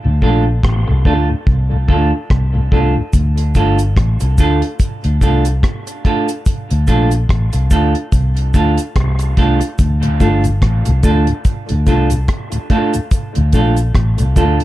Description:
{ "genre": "dub reggae", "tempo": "72 BPM", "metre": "4/4", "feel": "swing 57% on 16ths", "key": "D minor", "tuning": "A4 = 440 Hz", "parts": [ { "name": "mellow tonewheel organ", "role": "accompaniment", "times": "0.0-3.0, 10.0-14.6 s", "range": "D2 to F4", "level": "-23 LUFS", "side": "left 2 dB", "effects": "overdrive, chorus vibrato, slow rotary speaker, dub echo" }, { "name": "vintage muted fingered electric bass", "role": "bass", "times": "0.1-14.6 s", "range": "G1 to D2", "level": "-14 LUFS", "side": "equal", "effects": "none" }, { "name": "semi-hollow electric guitar", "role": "accompaniment", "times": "0.2-14.6 s", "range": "A3 to A4", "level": "-19 LUFS", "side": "right 2 dB", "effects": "dub echo" }, { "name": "deep reggae drum kit", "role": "drums", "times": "0.2-14.6 s", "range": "hi-hat, kick drum, rim click", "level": "-16 LUFS", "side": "equal", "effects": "none" }, { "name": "cabasa", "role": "percussion", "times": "3.1-14.6 s", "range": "none", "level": "-35 LUFS", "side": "right 3 dB", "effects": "none" } ], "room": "small room ambience", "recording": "dark, warm production", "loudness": "-12 LUFS", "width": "side -15 dB against mid", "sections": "0.0-14.6 A section", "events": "break 0.0-3.1", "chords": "0.0 Dm" }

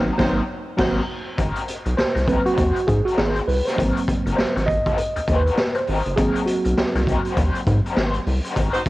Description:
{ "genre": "funk", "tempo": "100 BPM", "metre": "4/4", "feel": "swing 60% on 16ths", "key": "Ab mixolydian", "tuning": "A4 = 440 Hz", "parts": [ { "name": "mellow horn section", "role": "second line", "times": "0.0-0.9, 8.7-8.8 s", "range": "Eb4 to C5", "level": "-28 LUFS", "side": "equal", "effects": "cassette tape" }, { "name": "raw garage guitar", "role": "accompaniment", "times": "0.0-8.9 s", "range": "Gb3 to C5", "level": "-28 LUFS", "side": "left 4 dB", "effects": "wah, overdrive, tremolo, cassette tape" }, { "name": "tine electric piano", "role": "stabs", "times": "0.0-8.5 s", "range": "Gb3 to Eb5", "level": "-23 LUFS", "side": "right 1 dB", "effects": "medium stereo tremolo, cassette tape" }, { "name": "rubbery square bass", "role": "bass", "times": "0.0-8.7 s", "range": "Gb1 to Ab2", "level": "-22 LUFS", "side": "equal", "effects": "transformer saturation" }, { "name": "raw garage drum kit", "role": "drums", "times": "0.2-8.9 s", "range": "crash cymbal, hi-hat, kick drum, snare drum", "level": "-24 LUFS", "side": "equal", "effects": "cassette tape" } ], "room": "light reverb, small room ambience", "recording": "home recording on cassette", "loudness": "-18 LUFS", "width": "side -18 dB against mid", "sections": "0.0-1.4 A section; 1.4-8.9 B section", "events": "band accent 0.0-1.4, 8.6-8.9; tine electric piano solo 1.4-8.9", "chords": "0.0 Ab9" }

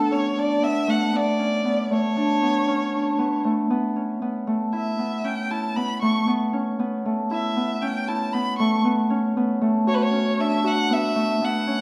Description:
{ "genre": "contemporary instrumental, contemporary", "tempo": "117 BPM", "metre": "5/4", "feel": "straight", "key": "unclear", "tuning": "A4 = 439 Hz", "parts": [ { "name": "clear violin", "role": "melody", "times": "0.0-11.8 s", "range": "A4 to C#6", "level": "-28 LUFS", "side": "equal", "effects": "none" }, { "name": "Celtic harp", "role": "arpeggios", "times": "0.0-11.8 s", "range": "A3 to F#4", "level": "-24 LUFS", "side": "equal", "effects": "none" } ], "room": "wet recital hall reverb, RT60 1.6 s", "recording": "none", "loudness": "-23 LUFS", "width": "mono", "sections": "0.0-11.8 A section", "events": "none", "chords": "0.0 Aadd9; 9.9 D" }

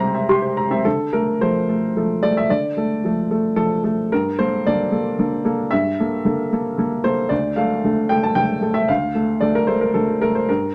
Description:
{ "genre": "neoclassical minimalist piano", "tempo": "112 BPM", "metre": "3/4", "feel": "rubato", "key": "D minor", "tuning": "A4 = 441 Hz", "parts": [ { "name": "warm upright piano", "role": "solo", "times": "0.0-10.7 s", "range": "D2 to Bb6", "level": "-20 LUFS", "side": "equal", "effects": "none" } ], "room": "wet studio ambience, RT60 0.5 s", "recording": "none", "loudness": "-20 LUFS", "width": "mono", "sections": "0.8-10.7 A section", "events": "none", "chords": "0.0 C7; 0.8 Dm; 4.1 Gmadd9; 7.3 Dm" }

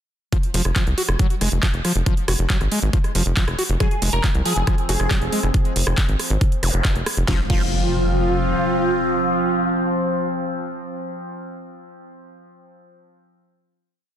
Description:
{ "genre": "psychedelic trance", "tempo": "138 BPM", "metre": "4/4", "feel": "straight", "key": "F phrygian", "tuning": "A4 = 443 Hz", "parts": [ { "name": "screaming distorted acid line", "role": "riff", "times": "0.3-7.6 s", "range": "F3 to Gb4", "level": "-27 LUFS", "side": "moving between left 5 dB and right 3 dB", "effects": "distortion, chorus, auto-pan, sidechain pumping, tape echo" }, { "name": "drum and bass drum kit", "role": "drums", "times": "0.3-7.6 s", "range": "crash cymbal, handclaps, hi-hat, rim click, snare drum", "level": "-25 LUFS", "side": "equal", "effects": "overdrive" }, { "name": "electronic kick drum", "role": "drums", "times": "0.3-7.6 s", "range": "none", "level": "-20 LUFS", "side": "equal", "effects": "overdrive" }, { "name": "tight sequencer bass", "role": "bass", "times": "0.5-8.5 s", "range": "F1 to C2", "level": "-21 LUFS", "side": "equal", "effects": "tube saturation" }, { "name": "supersaw stab", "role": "melody", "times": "3.8-10.6 s", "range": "F4 to Bb4", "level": "-25 LUFS", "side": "equal", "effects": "phaser, sidechain pumping, tape echo" }, { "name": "overtone-sweeping drone", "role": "sustained chords", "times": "4.4-10.4 s", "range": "F3 to C4", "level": "-24 LUFS", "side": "equal", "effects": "chorus, built-in reverb, sidechain pumping" }, { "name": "zap and impact", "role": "sound effects", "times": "6.6-10.4 s", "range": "none", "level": "-29 LUFS", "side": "equal", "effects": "none" } ], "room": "light reverb, digital ambience", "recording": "dense, heavily limited modern master", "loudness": "-18 LUFS", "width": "side -10 dB against mid", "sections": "0.3-7.3 drop; 7.3-10.8 final chord", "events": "drop 0.3-7.3", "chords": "0.3 F5" }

